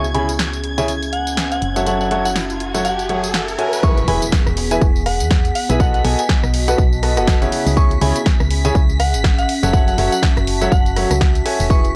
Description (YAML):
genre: piano house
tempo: 122 BPM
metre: 4/4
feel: swing 58% on 16ths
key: unclear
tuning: A4 = 439 Hz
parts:
  - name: soft synth bell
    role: melody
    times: 0.0-11.9 s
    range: F#5 to C#6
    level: -27 LUFS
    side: equal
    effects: chorus, tape echo
  - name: string machine, violins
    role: sustained chords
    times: 0.0-12.0 s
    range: G#6 to B6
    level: -33 LUFS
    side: equal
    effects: ensemble chorus, sidechain pumping
  - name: clear grand piano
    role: riff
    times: 0.0-11.8 s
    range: C#3 to B5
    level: -23 LUFS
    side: equal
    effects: sidechain pumping, tape echo
  - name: solid FM bass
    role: bass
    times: 0.0-11.9 s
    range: E1 to E2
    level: -23 LUFS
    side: equal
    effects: sidechain pumping
  - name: house drum kit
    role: drums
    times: 0.0-11.9 s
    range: hi-hat, rim click, snare drum, tambourine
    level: -26 LUFS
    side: equal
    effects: none
  - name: riser and impact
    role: sound effects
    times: 1.4-5.8 s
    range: none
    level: -30 LUFS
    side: equal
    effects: none
  - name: warbly tape-like pad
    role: texture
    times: 0.0-12.0 s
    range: B3 to A5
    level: -29 LUFS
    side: equal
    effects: chorus, built-in reverb, sidechain pumping
  - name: electronic kick drum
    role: drums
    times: 3.8-11.8 s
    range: none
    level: -18 LUFS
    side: equal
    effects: none
room: digital ambience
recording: dry, gritty hardware recording, cassette tape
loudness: -17 LUFS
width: mono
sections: 0.0-3.8 A section; 3.8-12.0 B section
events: riser 1.4-3.8; drop 3.8-12.0; impact 3.8-5.8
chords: 0.0 C#m; 1.6 F#m7; 3.8 E; 5.8 B7; 7.5 C#m; 9.5 F#m7